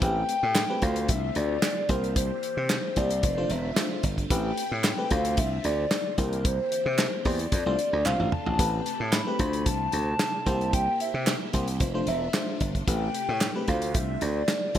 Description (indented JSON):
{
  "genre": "early-eighties boogie funk",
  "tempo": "112 BPM",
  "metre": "4/4",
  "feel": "straight",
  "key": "unclear",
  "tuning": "A4 = 440 Hz",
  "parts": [
    { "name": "hollow clarinet-like synth lead", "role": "melody", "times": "0.0-14.8 s", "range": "Bb4 to B5", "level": "-30 LUFS", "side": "left 1 dB", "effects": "chorus, phaser" },
    { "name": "FM electric piano", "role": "accompaniment", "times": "0.0-14.8 s", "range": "A3 to C5", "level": "-33 LUFS", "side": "left 2 dB", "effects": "chorus" },
    { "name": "phased string machine", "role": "sustained chords", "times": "0.0-14.8 s", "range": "C3 to B4", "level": "-38 LUFS", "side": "equal", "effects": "ensemble chorus, phaser" },
    { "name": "slap bass", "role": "bass", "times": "0.0-14.8 s", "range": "E1 to C3", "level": "-29 LUFS", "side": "right 1 dB", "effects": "none" },
    { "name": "damped 70s drum kit", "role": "drums", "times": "0.0-14.8 s", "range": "hi-hat, kick drum, snare drum, toms", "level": "-28 LUFS", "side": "equal", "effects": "gated reverb" },
    { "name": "group handclap", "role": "percussion", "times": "0.6-14.6 s", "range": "none", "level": "-33 LUFS", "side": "right 4 dB", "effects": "none" }
  ],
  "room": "moderate plate reverb, RT60 1.3 s, studio ambience",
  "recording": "bright 1980s-style digital production",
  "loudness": "-24 LUFS",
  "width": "side -10 dB against mid",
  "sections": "0.0-14.8 A section",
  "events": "drum fill 8.1-8.6",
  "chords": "0.0 Am9; 0.8 Dm7; 1.9 C7; 3.2 F6; 4.3 Am9; 5.1 Dm7; 6.2 C7; 7.5 F6; 8.6 Am9; 9.4 Dm7; 10.5 C7; 11.8 F6; 12.9 Am9; 13.7 Dm7",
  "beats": "| 0.02 0.55 1.09 1.63 | 2.16 2.70 3.23 3.77 | 4.30 4.84 5.38 5.91 | 6.45 6.98 7.52 8.05 | 8.59 9.13 9.66 10.20 | 10.73 11.27 11.80 12.34 | 12.88 13.41 13.95 14.48"
}